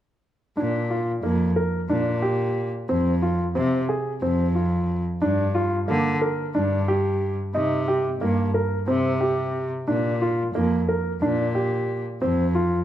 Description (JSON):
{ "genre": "contemporary instrumental, chamber music in an uneven meter", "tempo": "180 BPM (eighths)", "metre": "7/8", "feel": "straight", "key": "unclear", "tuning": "A4 = 439 Hz", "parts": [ { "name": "warm grand piano", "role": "arpeggios", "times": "0.6-12.8 s", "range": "Bb3 to Bb4", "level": "-24 LUFS", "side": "equal", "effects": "none" }, { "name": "rich cello", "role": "bass", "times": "0.6-12.8 s", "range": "F2 to D3", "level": "-24 LUFS", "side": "equal", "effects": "none" } ], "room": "moderate scoring stage reverb, RT60 1.9 s", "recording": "none", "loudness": "-21 LUFS", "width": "side -12 dB against mid", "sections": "0.6-12.8 A section", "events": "none", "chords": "0.6 Bb6; 2.9 F5; 5.2 Gm; 7.5 C7(no3); 9.9 Bb6; 12.2 F5" }